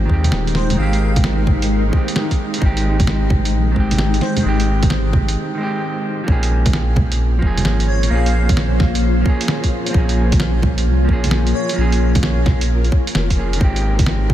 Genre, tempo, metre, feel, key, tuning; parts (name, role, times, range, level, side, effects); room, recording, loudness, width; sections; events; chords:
future garage; 131 BPM; 4/4; swing 67% on 16ths; Bb dorian; A4 = 441 Hz
clean electric guitar; accompaniment; 0.0-14.3 s; Eb3 to Ab4; -23 LUFS; right 2 dB; sidechain pumping, analog delay
granular cloud pad; sustained chords; 0.0-14.3 s; Ab3 to Db5; -24 LUFS; left 1 dB; built-in reverb, sidechain pumping
warm sub bass; bass; 0.0-14.3 s; Eb1 to Eb2; -18 LUFS; equal; sidechain pumping
electronic kick drum; drums; 0.1-14.3 s; -17 LUFS; equal; studio reverb
lo-fi sampler-style drum kit; drums; 0.2-14.3 s; bongos, hi-hat, snare drum; -22 LUFS; right 1 dB; overdrive, studio reverb
airy dreamy lead; melody; 0.6-1.2, 4.2-4.4, 7.9-8.5, 11.5-11.8 s; C5 to F5; -30 LUFS; left 1 dB; chorus, analog delay
light reverb; -14 LUFS; side -12 dB against mid
0.0-6.3 A section; 6.3-14.3 A section
break 5.4-6.3
0.0 Abmaj7; 6.3 Bbm7; 13.6 Abmaj7